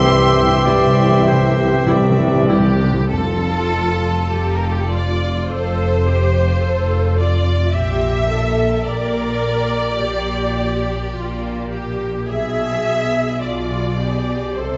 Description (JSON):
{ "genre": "classical, slow romantic movement for symphony orchestra", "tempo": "48-54 BPM", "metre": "4/4", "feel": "rubato", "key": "F major", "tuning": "A4 = 441 Hz", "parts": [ { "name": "clear studio violin section", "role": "melody", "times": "0.0-14.8 s", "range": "F4 to C6", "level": "-32 LUFS", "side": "equal", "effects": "none" }, { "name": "clear oboe", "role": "second line", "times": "0.0-3.1 s", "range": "C5 to E5", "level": "-25 LUFS", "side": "equal", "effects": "none" }, { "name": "mellow clarinet", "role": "second line", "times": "0.0-2.7 s", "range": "G4", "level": "-27 LUFS", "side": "equal", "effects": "none" }, { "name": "mellow hollow concert flute", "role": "second line", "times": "0.0-2.7 s", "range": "G5", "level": "-27 LUFS", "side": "equal", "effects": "none" }, { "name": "rich studio violin section", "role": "second line", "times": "0.0-14.8 s", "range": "G4 to E5", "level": "-25 LUFS", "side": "equal", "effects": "none" }, { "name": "dark bassoon", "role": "accompaniment", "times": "0.0-2.7 s", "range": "E3", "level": "-25 LUFS", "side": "equal", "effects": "none" }, { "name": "rich studio viola section", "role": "accompaniment", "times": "0.0-14.8 s", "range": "G3 to Bb4", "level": "-27 LUFS", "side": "equal", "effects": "none" }, { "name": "mellow trombone section", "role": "sustained chords", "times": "0.0-2.8 s", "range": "none", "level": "barely audible", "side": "none", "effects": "none" }, { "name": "warm French horn section", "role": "sustained chords", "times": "0.0-2.8 s", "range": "G3 to C4", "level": "-27 LUFS", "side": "equal", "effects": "none" }, { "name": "dark trumpet", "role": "stabs", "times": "0.0-2.7 s", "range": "G4", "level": "-25 LUFS", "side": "equal", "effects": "none" }, { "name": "clear studio double bass section", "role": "bass", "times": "0.0-14.8 s", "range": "F1 to C2", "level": "-26 LUFS", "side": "equal", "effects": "none" }, { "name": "mellow tuba", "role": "bass", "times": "0.0-3.0 s", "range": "C2", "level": "-24 LUFS", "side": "equal", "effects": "none" }, { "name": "rich studio cello section", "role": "bass", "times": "0.0-14.8 s", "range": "C2 to C3", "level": "-24 LUFS", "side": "equal", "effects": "none" }, { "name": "timpani", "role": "percussion", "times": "0.0-4.9 s", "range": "F2 to C3", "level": "-23 LUFS", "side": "equal", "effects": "none" } ], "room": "wet recital hall reverb, RT60 1.4 s", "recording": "dark, warm production, nothing above 7.9 kHz", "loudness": "-18 LUFS", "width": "mono", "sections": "0.0-3.1 A section; 3.1-14.8 B section", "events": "timpani fill 0.0-3.1", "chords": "0.0 C; 3.1 F; 7.7 Gm/Bb; 12.3 G13b9/B" }